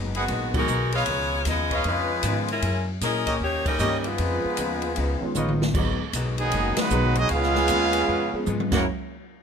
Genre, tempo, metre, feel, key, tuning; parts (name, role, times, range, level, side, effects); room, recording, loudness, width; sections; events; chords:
jazz, big band swing; 154 BPM; 4/4; swing 65% on 8ths; A4 = 439 Hz
archtop guitar, miked and amplified; accompaniment; 0.0-8.9 s; G#2 to G#4; -34 LUFS; left 6 dB
upright bass; bass; 0.0-8.8 s; F#1 to A#2; -28 LUFS; equal
open jazz drum kit; drums; 0.1-8.8 s; crash cymbal, hi-hat, kick drum, ride cymbal, snare drum, toms; -29 LUFS; equal
bright saxophone section; melody; 0.2-5.4 s; D#3 to D#5; -26 LUFS; left 3 dB
warm trumpet section; stabs; 0.2-5.5 s; E#4 to F#5; -30 LUFS; equal
warm grand piano; accompaniment; 0.5-8.8 s; D#3 to G#4; -30 LUFS; right 2 dB
bright trombone section; second line; 4.0-8.8 s; F#2 to E#4; -28 LUFS; right 2 dB
clear trumpet section; melody; 6.4-8.9 s; F#3 to F#5; -24 LUFS; right 2 dB
light reverb; close, detailed microphones; -21 LUFS; side -7 dB against mid
0.0-5.7 A section; 5.7-8.9 B section
band accent 0.5, 3.6, 6.7; drum fill 5.4-5.7, 8.5-8.9
0.0 G#m7; 1.1 C#9; 2.6 F#9; 3.4 D#7; 4.2 C#9; 5.7 G#m7; 7.3 C#7; 8.7 F#9; 8.9 N.C.